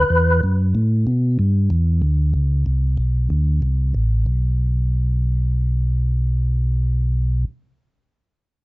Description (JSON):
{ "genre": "jazz", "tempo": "188 BPM", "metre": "4/4", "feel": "swing 62% on 8ths", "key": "unclear", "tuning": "A4 = 443 Hz", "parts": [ { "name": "mellow tonewheel organ", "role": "bass", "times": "0.0-7.4 s", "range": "A1 to B2", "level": "-17 LUFS", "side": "equal", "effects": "overdrive, chorus vibrato, slow rotary speaker" } ], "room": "little or no reverb", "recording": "nothing above 7.8 kHz", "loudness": "-17 LUFS", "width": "side -22 dB against mid", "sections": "0.0-1.7 A section; 1.7-4.3 B section; 4.3-6.8 C section", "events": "none", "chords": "none" }